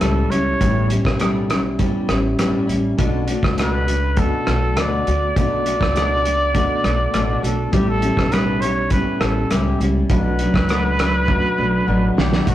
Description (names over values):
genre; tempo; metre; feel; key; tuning
indie pop, bedroom pop; 101 BPM; 4/4; straight; B minor; A4 = 437 Hz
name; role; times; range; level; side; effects
breathy trumpet; melody; 0.0-12.5 s; F#4 to D5; -22 LUFS; equal; none
nylon-string guitar; accompaniment; 0.0-12.5 s; A2 to F#4; -22 LUFS; left 1 dB; vibrato effect
reed electric piano; accompaniment; 0.0-12.5 s; A3 to A4; -29 LUFS; equal; fast tremolo
upright bass; bass; 0.0-12.5 s; G1 to D2; -22 LUFS; equal; none
cloth-damped thuddy drum kit; drums; 0.0-12.5 s; hi-hat, kick drum, rim click, snare drum; -22 LUFS; equal; none
room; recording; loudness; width
moderate stone room reverb, RT60 1.1 s; rough rehearsal-room recording, tube saturation; -16 LUFS; side -13 dB against mid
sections
0.0-12.5 A section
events
drum fill 11.3-12.5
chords
0.0 A7; 3.0 Bm7; 7.7 A7; 10.1 Bm7